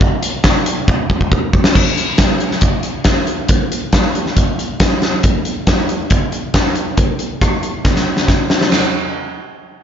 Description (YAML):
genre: rock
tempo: 137 BPM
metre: 4/4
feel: straight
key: none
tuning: none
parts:
  - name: big rock drum kit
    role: drums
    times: 0.0-8.8 s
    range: china cymbal, crash cymbal, hi-hat, kick drum, rim click, snare drum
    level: -13 LUFS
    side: equal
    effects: none
room: light reverb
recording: nothing above 7.5 kHz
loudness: -13 LUFS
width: side -8 dB against mid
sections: 0.0-1.7 A section; 1.7-8.7 B section; 8.7-9.8 C section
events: drum fill 0.9-1.7, 7.9-8.7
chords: none